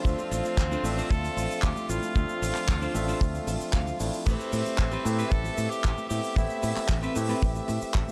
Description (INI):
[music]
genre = nu-disco, nu disco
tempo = 114 BPM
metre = 4/4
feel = straight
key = A minor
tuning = A4 = 440 Hz
[part]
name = barky tine electric piano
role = accompaniment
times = 0.0-8.1 s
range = F3 to E5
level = -36 LUFS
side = equal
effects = sidechain pumping
[part]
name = muted chamber violin section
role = sustained chords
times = 0.0-8.1 s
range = F4 to E5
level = -41 LUFS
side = equal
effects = sidechain pumping
[part]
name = clean electric guitar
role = riff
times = 0.0-7.9 s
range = C4 to A5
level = -38 LUFS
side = equal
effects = subtle chorus
[part]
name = kick drum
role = drums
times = 0.0-8.1 s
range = none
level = -28 LUFS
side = equal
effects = none
[part]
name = congas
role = percussion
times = 0.0-8.1 s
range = none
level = -43 LUFS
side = equal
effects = none
[part]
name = edgy tenor saxophone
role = melody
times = 0.1-6.9 s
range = C4 to A4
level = -37 LUFS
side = equal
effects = none
[part]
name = modern bright fingered electric bass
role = bass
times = 0.1-8.0 s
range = A1 to A2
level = -33 LUFS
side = equal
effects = none
[part]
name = damped 70s drum kit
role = drums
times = 0.1-8.1 s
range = crash cymbal, handclaps, hi-hat, shaker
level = -38 LUFS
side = equal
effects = none
[sound]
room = small room ambience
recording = dry, gritty hardware recording, cassette tape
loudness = -28 LUFS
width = mono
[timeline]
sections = 0.0-8.1 A section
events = clean electric guitar fill 3.2-4.3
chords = 0.0 Dm7; 4.3 Am9